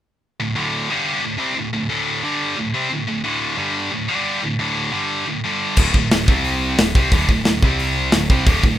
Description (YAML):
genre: heavy metal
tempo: 178 BPM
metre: 4/4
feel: straight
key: unclear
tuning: A4 = 440 Hz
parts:
  - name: heavy high-gain guitar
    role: riff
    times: 0.4-8.8 s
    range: D2 to C4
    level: -19 LUFS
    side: equal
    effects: distortion
  - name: growling picked electric bass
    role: bass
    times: 5.8-8.8 s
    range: D1 to C2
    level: -24 LUFS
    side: equal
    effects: overdrive
  - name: modern studio drum kit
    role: drums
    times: 5.8-8.7 s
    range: crash cymbal, hi-hat, kick drum, snare drum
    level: -16 LUFS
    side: equal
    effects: none
room: little or no reverb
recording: rough home demo mix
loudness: -17 LUFS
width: side -12 dB against mid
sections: 0.4-5.8 A section; 5.8-8.8 B section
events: none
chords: 0.4 D5; 0.9 G5; 1.2 D5; 2.2 G5; 2.6 D5; 3.6 G5; 3.9 D5; 4.1 G5; 4.4 D5; 4.9 G5; 5.3 D5; 5.4 G5; 5.8 D5; 6.3 C5; 6.8 D5; 7.6 C5; 8.1 D5